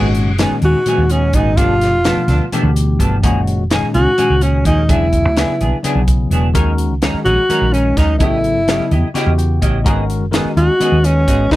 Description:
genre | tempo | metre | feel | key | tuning
electric jazz fusion | 253 BPM (eighths) | 7/8 | straight | G# minor | A4 = 440 Hz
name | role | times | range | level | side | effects
bell-like tine electric piano | accompaniment | 0.0-11.6 s | A#2 to G5 | -20 LUFS | left 3 dB | phaser
semi-hollow electric guitar | stabs | 0.0-11.6 s | F3 to D#5 | -22 LUFS | right 2 dB | analog chorus
hollow-body short-scale fingered electric bass | bass | 0.0-11.6 s | E1 to E2 | -16 LUFS | equal | none
crisp fusion drum kit | drums | 0.1-11.6 s | hi-hat, kick drum, snare drum | -19 LUFS | equal | none
breathy alto saxophone | melody | 0.6-11.6 s | C#4 to F#4 | -16 LUFS | equal | slapback echo
room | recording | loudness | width
little or no reverb | none | -12 LUFS | side -16 dB against mid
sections
0.0-11.6 A section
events
tine electric piano fill 9.2-9.9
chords
0.0 G#m7; 1.6 G9; 3.2 F#maj9; 4.9 E9; 6.6 D#m7; 8.2 A7#11; 9.9 G#m7

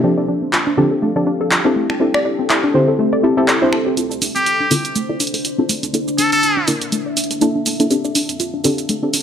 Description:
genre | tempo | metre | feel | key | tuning
deep house | 122 BPM | 4/4 | swing 56% on 16ths | D minor | A4 = 440 Hz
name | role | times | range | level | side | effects
warbly dusty pluck | arpeggios | 0.0-9.2 s | D3 to D5 | -22 LUFS | left 1 dB | chorus, tape echo
deep mellow chord stab | stabs | 0.0-9.2 s | F3 to C5 | -18 LUFS | equal | chorus, digital delay
deep dark ambient pad | texture | 0.1-9.2 s | Bb3 to A5 | -24 LUFS | left 1 dB | chorus, built-in reverb
punchy analog drum machine | drums | 0.5-9.2 s | cabasa, finger snaps, handclaps, hi-hat | -19 LUFS | right 1 dB | high-pass filter on hats, studio reverb, high-pass filter on perc, high-pass filter on snare
round analog bass | bass | 4.0-8.8 s | D1 to F2 | -41 LUFS | right 1 dB | none
trumpet with straight mute | melody | 4.4-6.7 s | G4 to A4 | -17 LUFS | equal | digital delay
room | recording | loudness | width
moderate digital room reverb, RT60 1.1 s, digital ambience | none | -14 LUFS | side -8 dB against mid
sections
0.0-4.0 A section; 4.0-9.2 B section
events
filter sweep on synth stab 0.0-4.0, 4.0-9.2; filter sweep on synth pluck 0.0-4.0, 4.0-9.2; build-up 4.0-9.2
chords
0.0 F69; 1.8 Am7; 4.0 Dm7; 5.9 C13; 7.9 F69

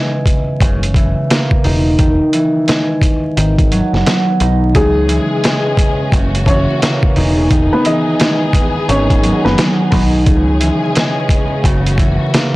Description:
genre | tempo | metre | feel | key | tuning
hip hop, boom-bap hip-hop | 87 BPM | 4/4 | swing 63% on 16ths | C# dorian | A4 = 441 Hz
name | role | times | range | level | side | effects
concert harp | accompaniment | 0.0-12.6 s | C#3 to D#4 | -15 LUFS | equal | cassette tape, high-pass filter, low-pass filter
trip hop sampler-style drum kit | drums | 0.3-12.5 s | hi-hat, kick drum, snare drum | -14 LUFS | equal | none
deep dub picked electric bass | bass | 0.6-12.2 s | E1 to C#2 | -16 LUFS | equal | transformer saturation
dark upright piano | melody | 4.8-9.6 s | G#3 to D#5 | -18 LUFS | left 1 dB | high-pass filter, low-pass filter, digital delay
warm studio string section | sustained chords | 4.8-12.6 s | C#3 to G#4 | -21 LUFS | left 2 dB | high-pass filter, low-pass filter
room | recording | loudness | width
light reverb | blown-out, overdriven recording, vinyl crackle, overdrive | -11 LUFS | side -19 dB against mid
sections
0.0-12.6 A section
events
none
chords
0.0 C#m; 0.6 F#7; 1.6 Emaj7; 3.4 G#m7; 4.7 C#m; 6.1 F#7; 7.2 Emaj7; 8.9 G#m7; 10.3 C#m; 11.6 F#7

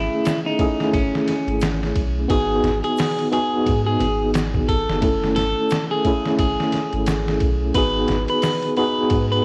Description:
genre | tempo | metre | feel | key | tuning
trip hop | 88 BPM | 4/4 | swing 59% on 16ths | G# phrygian | A4 = 442 Hz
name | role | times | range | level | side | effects
clean electric guitar | melody | 0.0-9.4 s | C#4 to B4 | -26 LUFS | equal | vintage 12-bit sampler grit, cassette tape, tape echo
mellow tine electric piano | accompaniment | 0.0-9.4 s | A3 to A4 | -24 LUFS | equal | tremolo, cassette tape
soft dub sub bass | bass | 0.0-9.4 s | F#1 to G#2 | -27 LUFS | equal | none
trip hop sampler-style drum kit | drums | 0.3-9.3 s | hi-hat, kick drum, ride cymbal, snare drum | -28 LUFS | equal | studio reverb, cassette tape
egg shaker and congas | percussion | 0.3-8.6 s | none | -35 LUFS | equal | none
room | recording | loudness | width
light reverb | home recording on cassette | -20 LUFS | mono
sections
0.0-9.4 A section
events
none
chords
0.0 F#m9 (rootless); 2.3 G#m7; 5.0 F#m9; 7.7 G#m7

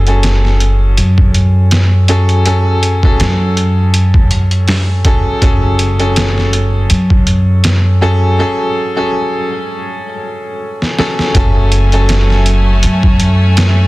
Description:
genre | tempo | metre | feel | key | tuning
trip hop | 81 BPM | 4/4 | swing 55% on 16ths | unclear | A4 = 441 Hz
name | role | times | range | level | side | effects
clear upright piano | accompaniment | 0.0-13.9 s | F#3 to A4 | -17 LUFS | equal | tremolo, tape echo
upright bass | bass | 0.0-13.9 s | F#1 to F#2 | -11 LUFS | equal | none
trip hop sampler-style drum kit | drums | 0.1-13.8 s | hi-hat, kick drum, snare drum | -14 LUFS | equal | overdrive
warm chamber string section | sustained chords | 11.3-13.9 s | F#3 to G#5 | -19 LUFS | left 1 dB | none
room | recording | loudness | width
studio reverb | dense, heavily limited modern master | -9 LUFS | side -20 dB against mid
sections
0.0-11.3 A section; 11.3-13.9 B section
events
break 8.4-11.3; drum fill 10.8-11.3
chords
0.0 F#madd9

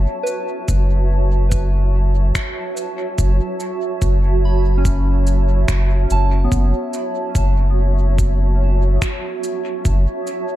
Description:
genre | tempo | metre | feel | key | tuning
ambient dub | 72 BPM | 4/4 | swing 59% on 16ths | F# minor | A4 = 439 Hz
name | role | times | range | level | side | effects
granular cloud pad | sustained chords | 0.0-10.6 s | F#4 to A5 | -24 LUFS | right 2 dB | built-in reverb
soft synth bell | arpeggios | 0.0-10.6 s | B3 to B5 | -29 LUFS | right 1 dB | chorus, phaser, dub echo
soft dub sub bass | bass | 0.0-10.1 s | F#1 | -15 LUFS | equal | none
electronic cabasa and finger snaps | drums | 0.3-10.5 s | none | -29 LUFS | right 1 dB | dub echo
electronic kick drum | drums | 0.7-10.0 s | none | -20 LUFS | equal | none
room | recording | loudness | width
digital ambience | echo-heavy mix | -15 LUFS | side -14 dB against mid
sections
0.0-10.6 A section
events
none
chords
0.0 F#m7

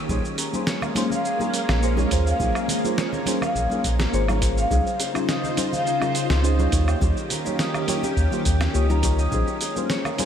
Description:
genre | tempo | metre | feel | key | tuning
sunset chillout | 104 BPM | 4/4 | swing 53% on 16ths | Bb dorian | A4 = 440 Hz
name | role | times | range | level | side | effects
mellow FM electric piano | accompaniment | 0.0-10.3 s | Bb3 to Eb5 | -28 LUFS | moving between left 9 dB and right 7 dB | chorus, phaser, auto-pan, tape echo
soft string machine | sustained chords | 0.0-10.3 s | Db3 to C5 | -28 LUFS | left 1 dB | phaser, ensemble chorus
concert harp | arpeggios | 0.1-10.3 s | G4 to Bb5 | -29 LUFS | equal | tape echo
round analog bass | bass | 0.1-9.4 s | Ab1 to Eb2 | -22 LUFS | equal | none
dusty soul sampler-style drum kit | drums | 0.1-10.3 s | hi-hat, shaker, snare drum, woodblock | -28 LUFS | right 1 dB | none
electronic kick drum | drums | 0.1-9.4 s | none | -27 LUFS | equal | none
congas and bongos | percussion | 0.1-10.3 s | none | -32 LUFS | right 1 dB | none
room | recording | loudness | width
moderate huge ambient reverb, RT60 9.2 s | dreamy mix soaked in reverb | -20 LUFS | side -8 dB against mid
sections
0.1-10.3 A section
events
none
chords
0.1 Bbm9; 4.7 Dbmaj9; 6.7 Eb7; 9.3 Bbm9

